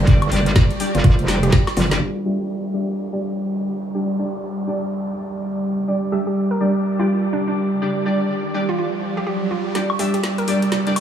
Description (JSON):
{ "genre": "bass house", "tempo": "124 BPM", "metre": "4/4", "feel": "swing 61% on 16ths", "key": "unclear", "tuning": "A4 = 440 Hz", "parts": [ { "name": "metallic wobble bass", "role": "bass", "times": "0.0-2.0 s", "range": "F1 to G1", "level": "-19 LUFS", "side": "right 1 dB", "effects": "chorus, sidechain pumping" }, { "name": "warbly tape-like pad", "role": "texture", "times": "0.0-11.0 s", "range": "G3 to D6", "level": "-23 LUFS", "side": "right 1 dB", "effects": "chorus, built-in reverb, sidechain pumping" }, { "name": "orchestra-hit-like synth stab", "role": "stabs", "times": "0.1-10.9 s", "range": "G3 to E5", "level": "-24 LUFS", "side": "left 1 dB", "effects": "built-in reverb, cassette tape, sidechain pumping, diffuse ambient delay" }, { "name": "electronic kick drum", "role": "drums", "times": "0.1-1.6 s", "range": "none", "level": "-14 LUFS", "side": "equal", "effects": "overdrive" }, { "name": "garage drum kit", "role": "drums", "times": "0.1-2.1, 9.8-11.0 s", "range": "crash cymbal, hi-hat, snare drum, toms, woodblock", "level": "-26 LUFS", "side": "equal", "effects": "low-pass filter on hats, low-pass filter on perc, low-pass filter on snare, low-pass filter on toms, low-pass filter on cymbals" }, { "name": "hollow square pluck", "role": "melody", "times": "0.9-2.0, 6.1-10.5 s", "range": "D4 to Bb4", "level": "-28 LUFS", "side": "right 2 dB", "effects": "chorus, diffuse ambient delay" }, { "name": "downlifter and riser", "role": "sound effects", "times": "2.0-11.0 s", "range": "none", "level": "-33 LUFS", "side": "right 1 dB", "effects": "none" } ], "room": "moderate huge ambient reverb, RT60 7.2 s", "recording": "dreamy mix soaked in reverb, low-pass filter, studio ambience", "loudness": "-18 LUFS", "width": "side -9 dB against mid", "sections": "0.0-2.0 A section; 2.0-9.8 B section; 9.8-11.0 C section", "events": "drum fill 1.6-2.0, 9.8-11.0; band accent 1.9; filter sweep on synth stab 2.0-9.8; filter sweep 2.0-9.8; riser 5.9-9.8, 9.8-11.0; build-up 9.8-11.0", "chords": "0.0 G5" }